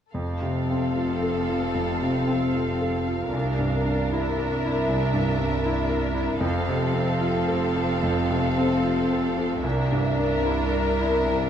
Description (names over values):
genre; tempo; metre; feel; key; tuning
classical; 76 BPM; 4/4; uneven beats, rubato; F major; A4 = 439 Hz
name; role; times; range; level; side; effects
clear concert grand piano; melody; 0.1-11.5 s; C2 to Bb4; -25 LUFS; left 1 dB; none
warm symphonic violin section; melody; 0.1-11.5 s; E5 to F5; -33 LUFS; left 1 dB; none
warm symphonic violin section; second line; 0.1-11.5 s; A4 to Bb4; -30 LUFS; left 1 dB; none
rich symphonic viola section; accompaniment; 0.1-11.5 s; C4 to D4; -32 LUFS; right 2 dB; none
rich studio cello section; bass; 0.1-11.5 s; C2 to F2; -32 LUFS; right 3 dB; none
rich studio double bass section; bass; 0.1-11.5 s; F1 to C2; -32 LUFS; right 4 dB; none
room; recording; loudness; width
moderate recital hall reverb, RT60 1.5 s; none; -22 LUFS; side -9 dB against mid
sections
0.1-11.5 A section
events
none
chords
0.1 F; 3.3 C9; 6.4 F; 9.6 C9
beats
| 0.14 0.97 1.76 2.56 | 3.34 4.13 4.89 5.65 | 6.43 7.21 8.03 8.84 | 9.64 10.45 11.26